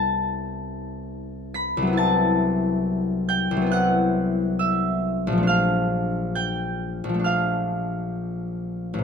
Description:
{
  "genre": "classical, solo harp piece",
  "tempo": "60-71 BPM",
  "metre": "4/4",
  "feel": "rubato",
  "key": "unclear",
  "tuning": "A4 = 440 Hz",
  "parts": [
    { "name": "concert harp", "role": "solo", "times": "0.0-9.0 s", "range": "A1 to B6", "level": "-21 LUFS", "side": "left 1 dB", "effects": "none" }
  ],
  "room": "light reverb",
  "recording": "close, detailed microphones",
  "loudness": "-21 LUFS",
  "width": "side -6 dB against mid",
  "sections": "0.0-9.0 A section",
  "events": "none",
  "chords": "0.0 Cmaj7; 2.0 Emadd9/C; 5.5 Bbmaj7",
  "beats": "0.26 1.12 | 1.98 2.85 3.73 4.61 | 5.48 6.36 7.26 8.18"
}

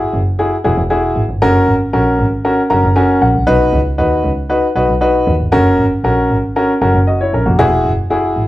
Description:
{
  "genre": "uptempo 1960s-style soul",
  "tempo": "117 BPM",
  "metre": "4/4",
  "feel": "straight",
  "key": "unclear",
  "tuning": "A4 = 440 Hz",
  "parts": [
    { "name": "warm baby grand piano", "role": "accompaniment", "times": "0.0-8.4 s", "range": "A#3 to A#5", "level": "-13 LUFS", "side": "left 1 dB", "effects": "none" },
    { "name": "warm double bass", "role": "bass", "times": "0.0-8.5 s", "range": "E1 to D#2", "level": "-16 LUFS", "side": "right 1 dB", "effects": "none" }
  ],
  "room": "moderate large studio reverb, RT60 0.9 s",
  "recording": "none",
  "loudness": "-11 LUFS",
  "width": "side -16 dB against mid",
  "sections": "0.0-8.5 A section",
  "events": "grand piano fill 2.4-3.5",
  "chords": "0.0 Eadd9; 1.4 F#; 3.5 B; 5.5 F#; 7.6 Eadd9",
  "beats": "0.39 0.90 | 1.42 1.93 2.45 2.96 | 3.48 3.99 4.51 5.02 | 5.54 6.05 6.57 7.08 | 7.59 8.11"
}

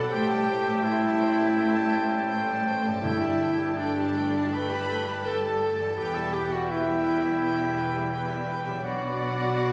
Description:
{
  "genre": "cinematic, emotional film score for orchestra",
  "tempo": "83 BPM",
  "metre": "4/4",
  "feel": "rubato",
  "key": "G major",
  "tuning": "A4 = 441 Hz",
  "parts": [
    { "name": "warm symphonic violin section", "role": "melody", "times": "0.0-9.7 s", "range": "D5 to A5", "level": "-43 LUFS", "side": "equal", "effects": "none" },
    { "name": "clear clarinet", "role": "second line", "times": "0.0-9.7 s", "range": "F#5 to G5", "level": "-35 LUFS", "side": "equal", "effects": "none" },
    { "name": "clear oboe", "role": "second line", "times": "0.0-9.7 s", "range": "D4 to B4", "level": "-38 LUFS", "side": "equal", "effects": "none" },
    { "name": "mellow concert flute", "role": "second line", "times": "0.0-9.7 s", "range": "A5 to B5", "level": "-40 LUFS", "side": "equal", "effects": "none" },
    { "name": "rich symphonic violin section", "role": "second line", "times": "0.0-9.7 s", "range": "D5 to B5", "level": "-42 LUFS", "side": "equal", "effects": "none" },
    { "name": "warm symphonic viola section", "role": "accompaniment", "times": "0.0-9.7 s", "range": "E3 to D5", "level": "-38 LUFS", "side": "equal", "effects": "none" },
    { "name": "warm French horn section", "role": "sustained chords", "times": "0.0-9.7 s", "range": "D4 to B4", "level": "-30 LUFS", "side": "equal", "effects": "none" },
    { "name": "concert harp", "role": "arpeggios", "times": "0.0-9.7 s", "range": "E2 to D5", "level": "-43 LUFS", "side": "equal", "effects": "none" },
    { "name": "clear symphonic double bass section", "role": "bass", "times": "0.0-9.7 s", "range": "E1 to B1", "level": "-40 LUFS", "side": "equal", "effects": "none" },
    { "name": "rich symphonic cello section", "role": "bass", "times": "0.0-9.7 s", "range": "E2 to B2", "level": "-35 LUFS", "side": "equal", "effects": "none" },
    { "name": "timpani", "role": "percussion", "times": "3.0-4.1 s", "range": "G2", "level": "-41 LUFS", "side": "equal", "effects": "none" }
  ],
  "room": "wet scoring stage reverb, RT60 1.6 s",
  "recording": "none",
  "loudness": "-26 LUFS",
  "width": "mono",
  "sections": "0.0-9.7 A section",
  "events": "none",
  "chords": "0.1 Am7; 3.0 Gsus2; 6.0 Em; 8.8 Bm",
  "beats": "| 0.11 0.84 1.56 2.30 | 3.03 3.76 4.52 5.24 | 5.96 6.68 7.40 8.11 | 8.83 9.55"
}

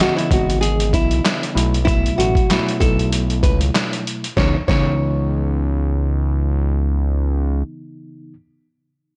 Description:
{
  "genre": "hip hop, boom-bap hip-hop",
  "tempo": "96 BPM",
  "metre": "4/4",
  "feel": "swing 57% on 16ths",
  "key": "C# minor",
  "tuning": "A4 = 442 Hz",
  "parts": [
    { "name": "nylon-string guitar", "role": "melody", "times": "0.0-6.2 s", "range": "E4 to C#5", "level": "-25 LUFS", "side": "equal", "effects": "high-pass filter, low-pass filter, delay" },
    { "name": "mellow tine electric piano", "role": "accompaniment", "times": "0.0-8.3 s", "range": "B2 to D#5", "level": "-27 LUFS", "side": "equal", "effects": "cassette tape, high-pass filter, low-pass filter" },
    { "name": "trip hop sampler-style drum kit", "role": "drums", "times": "0.0-4.9 s", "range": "handclaps, hi-hat, kick drum, snare drum", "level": "-22 LUFS", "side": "equal", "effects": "none" },
    { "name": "fat analog bass", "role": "bass", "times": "0.3-7.6 s", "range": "G#1 to C#2", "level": "-21 LUFS", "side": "equal", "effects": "none" }
  ],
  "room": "studio ambience",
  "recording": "nothing above 10.7 kHz",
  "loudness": "-18 LUFS",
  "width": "mono",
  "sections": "0.0-4.4 A section; 4.4-6.9 B section",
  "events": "none",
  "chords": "0.0 C#m9; 1.6 B7sus4; 4.4 C#m9",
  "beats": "0.00 0.62 1.25 | 1.87 2.50 3.12 3.75 | 4.37 5.00 5.62 6.25"
}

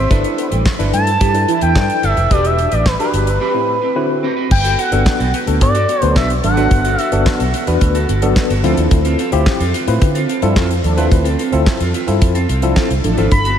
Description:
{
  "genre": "early-eighties boogie funk",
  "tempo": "109 BPM",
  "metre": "4/4",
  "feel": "straight",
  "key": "G major",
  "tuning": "A4 = 443 Hz",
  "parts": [
    { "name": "expressive synth lead", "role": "melody", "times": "0.0-7.2, 13.3-13.6 s", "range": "B4 to B5", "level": "-18 LUFS", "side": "equal", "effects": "chorus, ping-pong delay" },
    { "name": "clean electric guitar", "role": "riff", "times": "0.0-13.6 s", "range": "B3 to D5", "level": "-24 LUFS", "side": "right 4 dB", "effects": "analog chorus" },
    { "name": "vintage muted fingered electric bass", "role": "bass", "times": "0.0-13.5 s", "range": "E1 to D3", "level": "-17 LUFS", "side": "equal", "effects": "none" },
    { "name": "tine electric piano", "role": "accompaniment", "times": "0.1-13.3 s", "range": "A2 to B4", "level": "-20 LUFS", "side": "left 3 dB", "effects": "overdrive, fast stereo tremolo" },
    { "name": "damped 70s drum kit", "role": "drums", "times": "0.1-13.6 s", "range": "crash cymbal, handclaps, hi-hat, kick drum, snare drum", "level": "-18 LUFS", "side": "equal", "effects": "none" },
    { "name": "mellow synth brass", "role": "second line", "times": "0.4-1.7, 6.0-13.3 s", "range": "E3 to B4", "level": "-24 LUFS", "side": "right 2 dB", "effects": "chorus, phaser" }
  ],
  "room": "moderate huge ambient reverb, RT60 4.6 s",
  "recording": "dreamy mix soaked in reverb",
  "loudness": "-12 LUFS",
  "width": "side -9 dB against mid",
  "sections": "0.0-4.5 A section; 4.5-13.6 B section",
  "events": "analog synth lead solo 0.0-4.5; break 3.4-4.5",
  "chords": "0.1 G69; 2.3 Em7; 3.4 Am9; 4.0 D13; 4.5 Gmaj9; 8.6 Dm7",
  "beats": "| 0.11 0.66 1.21 1.76 | 2.31 2.86 3.41 3.96 | 4.51 5.06 5.61 6.16 | 6.71 7.26 7.81 8.36 | 8.91 9.46 10.02 10.56 | 11.12 11.67 12.22 12.77 | 13.32"
}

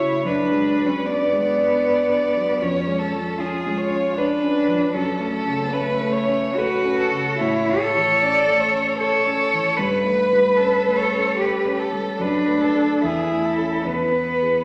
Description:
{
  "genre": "classical, slow romantic movement for piano trio",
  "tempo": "75 BPM",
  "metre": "3/4",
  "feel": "uneven beats, rubato",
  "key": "F# minor, A major from 7.4 s",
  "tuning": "A4 = 440 Hz",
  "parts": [
    { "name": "rich violin", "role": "melody", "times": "0.0-14.6 s", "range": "G#4 to D5", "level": "-26 LUFS", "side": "equal", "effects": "none" },
    { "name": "clear cello", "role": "second line", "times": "0.0-14.6 s", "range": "A3 to C#5", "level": "-23 LUFS", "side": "equal", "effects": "none" },
    { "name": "dark concert grand piano", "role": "accompaniment", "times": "0.0-14.6 s", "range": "E2 to D5", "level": "-29 LUFS", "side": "equal", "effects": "none" }
  ],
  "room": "wet scoring stage reverb, RT60 1.7 s",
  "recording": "none",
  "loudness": "-20 LUFS",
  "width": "mono",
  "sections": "0.0-14.6 A section",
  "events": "none",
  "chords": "0.3 G#m7b5/F#; 2.6 C#7/E#; 4.9 F#m; 7.4 A; 9.8 A7/G; 12.2 D/F#; 13.0 A/E; 13.8 E",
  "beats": "| 0.25 1.05 1.84 | 2.62 3.40 4.17 | 4.94 5.72 6.56 | 7.39 8.21 8.99 | 9.78 10.59 11.38 | 12.20 13.02 13.85"
}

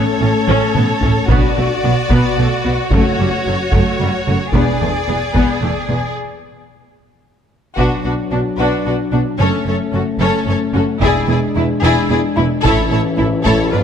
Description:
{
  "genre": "cinematic, epic orchestral film score",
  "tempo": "111 BPM",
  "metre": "3/4",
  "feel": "straight",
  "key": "B minor",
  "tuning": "A4 = 440 Hz",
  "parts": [
    { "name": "rich symphonic violin section", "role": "melody", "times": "0.0-13.8 s", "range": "F#4 to D5", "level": "-24 LUFS", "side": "left 3 dB", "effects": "none" },
    { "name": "rich studio violin section", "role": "second line", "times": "0.0-13.8 s", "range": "D4 to B4", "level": "-21 LUFS", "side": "left 2 dB", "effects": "none" },
    { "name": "clear symphonic viola section", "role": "accompaniment", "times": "0.0-13.8 s", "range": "G3 to F4", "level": "-22 LUFS", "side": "equal", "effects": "none" },
    { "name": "dark French horn section", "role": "sustained chords", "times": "0.0-4.7, 7.8-13.8 s", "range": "E3 to D4", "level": "-21 LUFS", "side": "left 5 dB", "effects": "none" },
    { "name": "clear symphonic cello section", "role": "bass", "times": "0.0-13.8 s", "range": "E2 to B2", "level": "-21 LUFS", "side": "right 2 dB", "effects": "none" },
    { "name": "warm studio double bass section", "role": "bass", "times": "0.0-13.8 s", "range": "E1 to B1", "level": "-20 LUFS", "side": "right 2 dB", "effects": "none" },
    { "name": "taiko ensemble", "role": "drums", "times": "0.5-13.8 s", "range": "none", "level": "-20 LUFS", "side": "equal", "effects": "none" },
    { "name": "timpani", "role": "percussion", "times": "2.9-3.7 s", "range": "F#2", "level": "-28 LUFS", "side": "left 1 dB", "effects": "none" }
  ],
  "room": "moderate scoring stage reverb, RT60 2.0 s",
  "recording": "none",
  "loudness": "-13 LUFS",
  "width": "side -8 dB against mid",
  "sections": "0.0-7.8 A section; 7.8-13.8 B section",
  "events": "drum fill 0.5-1.3, 7.0-7.8; break 6.2-7.8",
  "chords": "0.0 A; 1.3 Bm; 2.9 F#m; 4.5 E7; 6.2 N.C.; 7.8 Bm; 9.4 F#m; 11.0 E7; 12.6 A",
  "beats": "0.21 0.75 | 1.29 1.83 2.37 | 2.91 3.45 3.99 | 4.53 5.07 5.61 | 6.16 6.70 7.24 | 7.78 8.32 8.86 | 9.40 9.94 10.48 | 11.02 11.56 12.10 | 12.64 13.18 13.72"
}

